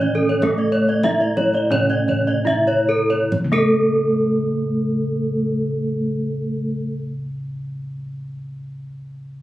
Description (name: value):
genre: Balinese gamelan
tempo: 66-110 BPM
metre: 4/4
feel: straight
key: unclear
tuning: A4 = 440 Hz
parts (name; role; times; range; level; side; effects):
- gamelan-type bronze metallophone; melody; 0.0-7.0 s; A3 to E4; -23 LUFS; equal; none
- gamelan-type bronze metallophone; accompaniment; 0.0-7.0 s; C#3 to A3; -31 LUFS; right 2 dB; none
- gamelan-type bronze metallophone; arpeggios; 0.0-7.0 s; A4 to D5+35c; -22 LUFS; right 1 dB; none
- gamelan-type bossed gongs; bass; 0.0-6.9 s; C#2 to A4; -25 LUFS; equal; none
- kendang; percussion; 0.0-3.7 s; none; -27 LUFS; right 1 dB; none
- gamelan-type bronze metallophone; arpeggios; 0.3-7.0 s; A4 to E5; -24 LUFS; equal; none
room: light reverb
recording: recorded on a phone in the room, club reverb, compression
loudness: -17 LUFS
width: side -15 dB against mid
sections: 0.0-3.3 A section; 3.3-9.4 B section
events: slowing down 0.0-3.3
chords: none